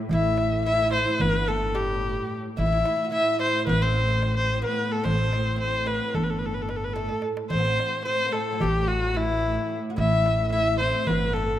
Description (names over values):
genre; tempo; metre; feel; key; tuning
Turkish makam ensemble; 219 BPM (eighths); 9/8; straight; A makam huseyni; A4 = 440 Hz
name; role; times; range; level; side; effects
muted studio cello section; drone; 0.0-11.6 s; A2; -33 LUFS; right 1 dB; stereo widening
clear kamancheh; melody; 0.1-11.6 s; E4 to E5; -25 LUFS; left 2 dB; none
oud; second line; 0.1-11.6 s; E3 to F#4-30c; -33 LUFS; right 4 dB; none
upright bass; bass; 0.1-11.6 s; G1 to A1; -27 LUFS; equal; none
darbuka; percussion; 0.1-11.2 s; none; -30 LUFS; right 1 dB; none
room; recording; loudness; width
moderate plate reverb, RT60 2.2 s; rough home demo mix; -22 LUFS; side -12 dB against mid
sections
0.0-11.6 A section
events
drum fill 7.0-7.5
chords
none